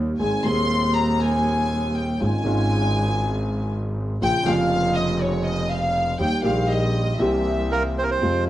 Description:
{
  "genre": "tango",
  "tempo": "120 BPM",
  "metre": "4/4",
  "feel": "rubato",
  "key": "Ab major",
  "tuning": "A4 = 440 Hz",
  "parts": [
    { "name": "warm concert grand piano", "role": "accompaniment", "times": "0.0-8.5 s", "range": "Eb1 to Ab4", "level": "-24 LUFS", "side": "equal", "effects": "none" },
    { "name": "bright double bass", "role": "bass", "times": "0.0-8.5 s", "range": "F1 to F2", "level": "-24 LUFS", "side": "equal", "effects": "none" },
    { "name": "warm symphonic violin section", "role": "second line", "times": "0.2-8.5 s", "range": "Bb3 to C6", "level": "-25 LUFS", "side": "left 1 dB", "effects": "slapback echo" },
    { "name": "bandoneon", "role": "melody", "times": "7.7-8.4 s", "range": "Bb4 to C5", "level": "-23 LUFS", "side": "right 4 dB", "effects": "plate reverb" }
  ],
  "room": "light reverb",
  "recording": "worn, warbling old tape, cassette tape, warbly pitch drift",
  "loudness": "-19 LUFS",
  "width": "side -13 dB against mid",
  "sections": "0.0-8.2 A section",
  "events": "violin section solo 0.0-8.2",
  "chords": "0.2 Ab; 2.2 Dbadd9/Ab; 4.2 Bbm; 6.2 Eb; 7.2 C7",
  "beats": "| 0.20 0.71 1.22 1.72 | 2.21 2.72 3.21 3.71 | 4.21 4.71 5.20 5.70 | 6.19 6.69 7.19 7.71 | 8.22"
}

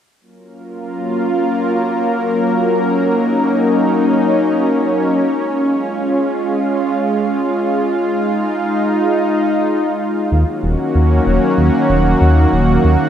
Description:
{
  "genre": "synthwave",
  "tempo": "free time",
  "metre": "none",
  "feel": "none",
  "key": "F# major",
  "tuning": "A4 = 440 Hz",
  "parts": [
    { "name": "lush unison pad", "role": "sustained chords", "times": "0.7-13.1 s", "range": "D#3 to A#4", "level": "-14 LUFS", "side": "equal", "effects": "chorus" },
    { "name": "dark detuned saw bass", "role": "bass", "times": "10.3-13.0 s", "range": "D#1 to D#2", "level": "-13 LUFS", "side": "equal", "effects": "none" }
  ],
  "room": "wet lush hall reverb, RT60 1.6 s",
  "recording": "bright 1980s-style digital production",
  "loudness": "-13 LUFS",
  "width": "side -9 dB against mid",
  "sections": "0.2-13.1 A section",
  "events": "none",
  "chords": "0.2 F#maj7; 5.3 C#; 10.3 D#m7",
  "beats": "free time"
}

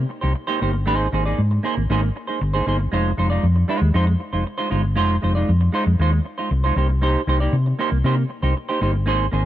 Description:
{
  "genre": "disco",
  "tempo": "117 BPM",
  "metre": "4/4",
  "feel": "straight",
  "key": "C minor",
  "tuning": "A4 = 440 Hz",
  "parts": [
    { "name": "semi-hollow electric guitar", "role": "accompaniment", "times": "0.0-9.5 s", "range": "Ab3 to D5", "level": "-22 LUFS", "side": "right 3 dB", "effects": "wide subtle chorus" },
    { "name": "hollow-body short-scale fingered electric bass", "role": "bass", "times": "0.0-9.5 s", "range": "F1 to C3", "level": "-19 LUFS", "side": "left 1 dB", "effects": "none" }
  ],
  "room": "light reverb",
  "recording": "dark, warm production",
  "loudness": "-18 LUFS",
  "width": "side -13 dB against mid",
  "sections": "0.0-9.5 A section",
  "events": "none",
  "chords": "0.0 Cm7; 0.9 Abadd9; 2.9 Fm7; 6.8 Cm7",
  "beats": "0.35 | 0.86 1.38 1.89 2.40 | 2.91 3.43 3.94 4.45 | 4.96 5.48 5.99 6.50 | 7.01 7.53 8.04 8.55 | 9.06"
}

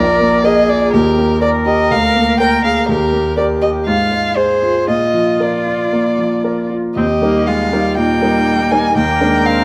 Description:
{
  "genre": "quick classical-period movement for piano quartet",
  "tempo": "114-125 BPM",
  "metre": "4/4",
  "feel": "rubato",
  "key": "Eb major",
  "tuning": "A4 = 440 Hz",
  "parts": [
    { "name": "rich violin", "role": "melody", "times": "0.0-9.6 s", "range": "Bb4 to Ab5", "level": "-19 LUFS", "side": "equal", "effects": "none" },
    { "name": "rich cello", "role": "second line", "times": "0.0-9.6 s", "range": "Eb4 to Bb4", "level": "-22 LUFS", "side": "equal", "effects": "none" },
    { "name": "clear concert grand piano", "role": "accompaniment", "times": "0.0-9.6 s", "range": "Bb1 to C5", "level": "-18 LUFS", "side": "equal", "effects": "none" },
    { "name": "clear viola", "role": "accompaniment", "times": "7.0-9.6 s", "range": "G3 to C4", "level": "-23 LUFS", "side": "equal", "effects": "none" }
  ],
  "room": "light reverb",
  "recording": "close, detailed microphones, tape saturation",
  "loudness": "-14 LUFS",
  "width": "mono",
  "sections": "0.0-7.0 A section; 7.0-9.6 B section",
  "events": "none",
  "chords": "0.0 Bb7; 0.9 Eb; 1.9 Bb7/D; 2.9 Eb; 3.9 Fm/Ab; 4.9 Bb; 7.0 Eb; 9.0 Bb7/Eb",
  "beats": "0.45 | 0.93 1.42 1.91 2.40 | 2.88 3.37 3.86 4.37 | 4.89 5.41 5.94 6.45 | 6.97 7.48 7.98 8.47 | 8.96 9.45"
}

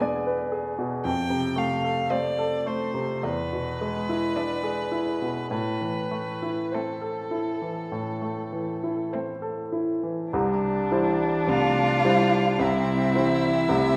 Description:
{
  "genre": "classical, slow romantic movement for piano quintet",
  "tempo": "49-58 BPM",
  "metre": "4/4",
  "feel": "rubato",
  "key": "A minor, C major from 10.3 s",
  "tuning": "A4 = 443 Hz",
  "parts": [
    { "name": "clear violin", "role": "second line", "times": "0.0-14.0 s", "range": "D4 to F4", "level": "-32 LUFS", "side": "equal", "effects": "none" },
    { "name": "rich cello", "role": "second line", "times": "0.0-14.0 s", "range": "E3 to A3", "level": "-34 LUFS", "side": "equal", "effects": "none" },
    { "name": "clear grand piano", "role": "accompaniment", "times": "0.0-14.0 s", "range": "C2 to D5", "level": "-28 LUFS", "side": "equal", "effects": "none" },
    { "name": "rich viola", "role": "accompaniment", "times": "0.0-14.0 s", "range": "B3 to D4", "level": "-33 LUFS", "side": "equal", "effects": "none" },
    { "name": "rich violin", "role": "melody", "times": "1.1-14.0 s", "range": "A4 to G5", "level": "-32 LUFS", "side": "equal", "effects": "none" }
  ],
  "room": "wet concert hall reverb, RT60 2.0 s",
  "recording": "none",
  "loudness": "-26 LUFS",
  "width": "mono",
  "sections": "0.0-10.3 A section; 10.3-14.0 B section",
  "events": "none",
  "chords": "0.0 E7; 1.1 F; 3.2 E7; 5.5 Am; 10.3 C",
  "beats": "0.01 | 1.05 2.11 3.23 4.36 | 5.51 6.74 7.94 9.14 | 10.33 11.49 12.61 13.70"
}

